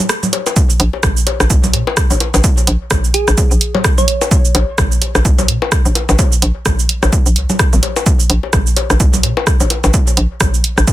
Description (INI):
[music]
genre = minimal techno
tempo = 128 BPM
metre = 4/4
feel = swing 58% on 16ths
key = Bb minor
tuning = A4 = 441 Hz
[part]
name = punchy analog drum machine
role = drums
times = 0.0-10.9 s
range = hi-hat, rim click, shaker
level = -16 LUFS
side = right 2 dB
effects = soft clipping on snare
[part]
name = bongos and congas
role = percussion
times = 0.0-10.9 s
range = none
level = -20 LUFS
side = left 4 dB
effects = dub echo
[part]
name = electronic kick drum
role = drums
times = 0.6-10.9 s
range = none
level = -14 LUFS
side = equal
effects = none
[part]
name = hollow knocking FM bass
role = bass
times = 0.8-10.8 s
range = Ab1 to Bb2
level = -14 LUFS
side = equal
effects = sidechain pumping
[part]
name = thumb-piano-like synth pluck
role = melody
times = 3.1-4.6 s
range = Ab4 to Db5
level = -21 LUFS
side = right 3 dB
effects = wide subtle chorus, dub echo
[sound]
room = little or no reverb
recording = dense, heavily limited modern master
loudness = -11 LUFS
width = side -14 dB against mid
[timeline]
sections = 0.0-10.9 A section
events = break 0.0-0.6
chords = none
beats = 0.09 | 0.56 1.03 1.50 1.97 | 2.44 2.91 3.38 3.84 | 4.31 4.78 5.25 5.72 | 6.19 6.66 7.12 7.59 | 8.06 8.53 9.00 9.47 | 9.94 10.41 10.88